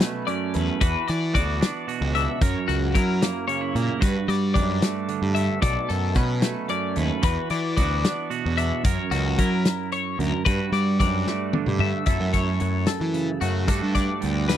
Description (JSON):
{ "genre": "math rock and midwest emo", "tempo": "75 BPM (dotted quarters)", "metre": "6/8", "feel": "straight", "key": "unclear", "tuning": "A4 = 438 Hz", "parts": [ { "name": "twangy electric guitar", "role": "accompaniment", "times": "0.0-14.6 s", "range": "F#2 to A#4", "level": "-28 LUFS", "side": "right 10 dB", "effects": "none" }, { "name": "twelve-string electric guitar", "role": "arpeggios", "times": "0.0-14.6 s", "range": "F#4 to E5", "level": "-28 LUFS", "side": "left 10 dB", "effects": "wide subtle chorus" }, { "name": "loose indie drum kit", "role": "drums", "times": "0.0-14.6 s", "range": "hi-hat, kick drum, snare drum, toms", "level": "-23 LUFS", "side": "left 1 dB", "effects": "none" }, { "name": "fuzz picked electric bass", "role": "bass", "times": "0.6-14.6 s", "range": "B1 to G3", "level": "-25 LUFS", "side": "equal", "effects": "overdrive" } ], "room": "little or no reverb", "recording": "dry, close 1970s-style studio recording", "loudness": "-21 LUFS", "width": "side -10 dB against mid", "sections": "0.0-12.1 A section; 12.1-14.6 B section", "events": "drum fill 11.3-12.1", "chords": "0.0 Bm9; 0.8 Esus2; 2.4 F#7; 4.0 Gmaj9; 5.6 Bm9; 7.2 Esus2; 8.8 F#7; 10.5 Gmaj9; 12.1 F#m7; 13.7 Gmaj7sus2", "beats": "0.01 | 0.81 1.61 | 2.42 3.22 | 4.02 4.83 | 5.63 6.43 | 7.24 8.04 | 8.85 9.65 | 10.46 11.26 | 12.07 12.88 | 13.68 14.49" }